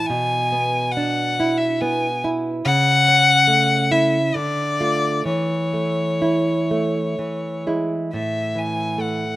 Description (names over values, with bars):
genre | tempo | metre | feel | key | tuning
romantic duo for violin and classical guitar | 61-73 BPM | 3/4 | rubato | A major | A4 = 439 Hz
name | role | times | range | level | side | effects
clear violin | melody | 0.0-9.4 s | C#5 to G#5 | -19 LUFS | left 2 dB | none
nylon-string guitar | accompaniment | 0.0-9.4 s | A2 to F4 | -21 LUFS | right 2 dB | none
room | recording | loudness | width
little or no reverb | recorded outdoors, with no room sound | -17 LUFS | side -16 dB against mid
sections
0.0-8.1 A section; 8.1-9.4 B section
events
none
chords
0.1 E7/B; 2.6 A/C#; 4.3 Dm; 5.3 A/E; 7.2 E; 8.1 A5